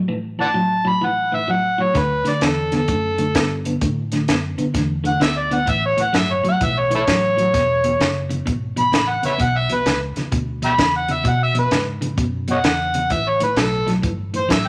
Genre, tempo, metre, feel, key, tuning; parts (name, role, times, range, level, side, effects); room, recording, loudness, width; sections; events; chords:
electric blues shuffle; 129 BPM; 4/4; swing 65% on 8ths; A major; A4 = 438 Hz
electric guitar at the edge of break-up; riff; 0.0-14.7 s; E2 to B3; -25 LUFS; equal
overdriven harmonica; melody; 0.4-14.7 s; E4 to B5; -22 LUFS; equal
compact cocktail drum kit; drums; 1.9-14.6 s; hi-hat, kick drum, snare drum; -24 LUFS; equal
vintage muted fingered electric bass; bass; 2.0-14.7 s; E1 to B2; -29 LUFS; equal
light reverb; -19 LUFS; mono
0.0-14.7 A section
0.0 A5; 2.0 Dadd9; 5.7 A9; 7.5 Eadd9; 13.1 Asus2